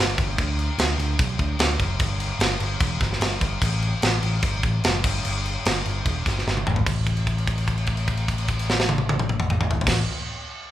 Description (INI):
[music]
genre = hard rock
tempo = 148 BPM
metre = 4/4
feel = straight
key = unclear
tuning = A4 = 440 Hz
[part]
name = picked electric bass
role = bass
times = 0.0-10.0 s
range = E1 to D2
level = -25 LUFS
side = equal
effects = none
[part]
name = tight metal drum kit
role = drums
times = 0.2-10.0 s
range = crash cymbal, kick drum, snare drum, toms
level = -23 LUFS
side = equal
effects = none
[sound]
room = moderate large studio reverb, RT60 1.3 s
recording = band playing live in one room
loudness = -21 LUFS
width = side -13 dB against mid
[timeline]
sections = 0.0-6.9 A section; 6.9-10.1 B section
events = drum fill 6.5-6.9; held note 6.9-9.9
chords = none